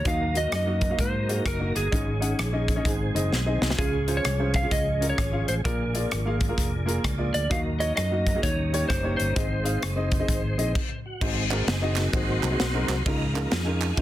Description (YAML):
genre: uptempo gospel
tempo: 129 BPM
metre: 4/4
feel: swing 63% on 8ths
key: unclear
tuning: A4 = 441 Hz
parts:
  - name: electric slide guitar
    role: melody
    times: 0.0-11.0 s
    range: Ab4 to F5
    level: -30 LUFS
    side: right 1 dB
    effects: none
  - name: warm upright piano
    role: accompaniment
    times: 0.0-14.0 s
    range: Ab2 to Gb5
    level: -30 LUFS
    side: equal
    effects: none
  - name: tonewheel organ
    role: sustained chords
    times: 0.0-14.0 s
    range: Eb3 to C5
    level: -33 LUFS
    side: right 1 dB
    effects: fast rotary speaker, chorus vibrato
  - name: fingered electric bass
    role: bass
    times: 0.0-14.0 s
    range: F1 to Ab2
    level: -28 LUFS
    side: equal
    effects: none
  - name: modern studio drum kit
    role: drums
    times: 0.1-14.0 s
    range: crash cymbal, hi-hat, kick drum, ride cymbal, rim click, snare drum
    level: -28 LUFS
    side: equal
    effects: soft clipping on snare
  - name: group handclap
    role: percussion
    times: 11.5-13.9 s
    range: none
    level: -33 LUFS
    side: right 8 dB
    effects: none
room: light reverb, small room ambience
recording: dense, heavily limited modern master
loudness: -23 LUFS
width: side -14 dB against mid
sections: 0.0-11.2 A section; 11.2-14.0 B section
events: drum fill 3.3-3.8; stop 10.8-11.2; tonewheel organ solo 11.2-14.0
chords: 0.1 Ebm; 1.9 Absus4; 2.9 Ab; 3.8 Db; 5.7 Bb7; 7.5 Ebm; 8.4 Eb7; 9.4 Ab; 11.2 Ab7; 13.1 Db69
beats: | 0.06 0.52 0.99 1.46 | 1.92 2.39 2.86 3.32 | 3.79 4.25 4.72 5.18 | 5.65 6.12 6.58 7.04 | 7.51 7.97 8.44 8.90 | 9.37 9.83 10.29 10.75 | 11.22 11.68 12.14 12.60 | 13.06 13.52 13.98